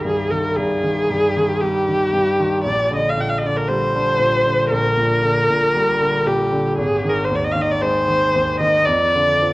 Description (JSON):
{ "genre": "classical, romantic duo for viola and grand piano", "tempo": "58 BPM", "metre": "4/4", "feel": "rubato", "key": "C minor", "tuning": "A4 = 435 Hz", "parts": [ { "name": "warm viola", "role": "melody", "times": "0.0-9.5 s", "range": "G4 to G5", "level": "-17 LUFS", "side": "equal", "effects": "none" }, { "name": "clear concert grand piano", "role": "accompaniment", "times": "0.0-9.5 s", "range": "Ab1 to Ab3", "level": "-22 LUFS", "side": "equal", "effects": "none" } ], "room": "wet recital hall reverb, RT60 1.6 s", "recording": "worn, warbling old tape, cassette tape, warbly pitch drift", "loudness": "-16 LUFS", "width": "side -19 dB against mid", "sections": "0.0-9.5 A section", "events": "none", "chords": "0.0 Cm; 2.6 Gm/Bb; 6.8 Ab5; 8.9 Dm/F" }